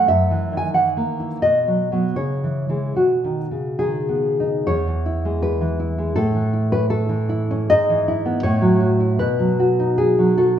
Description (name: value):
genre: romantic piece for solo classical guitar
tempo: 64-91 BPM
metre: 2/4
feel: rubato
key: E major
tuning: A4 = 439 Hz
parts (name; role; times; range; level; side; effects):
- nylon-string guitar; solo; 0.0-10.6 s; E2 to G#5; -17 LUFS; equal; none
room: wet recital hall reverb, RT60 1.6 s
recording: recorded in a church or concert hall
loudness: -17 LUFS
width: side -9 dB against mid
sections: 0.0-4.7 A section; 4.7-10.6 B section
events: none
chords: 0.1 F#7; 1.4 B; 2.2 C#m; 3.0 B; 4.7 E; 6.2 A; 7.7 E/G#; 8.4 F#m7/A; 9.2 B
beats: | 0.08 0.74 | 1.42 2.17 | 2.97 3.80 | 4.69 5.44 | 6.17 6.91 | 7.72 8.45 | 9.20 10.01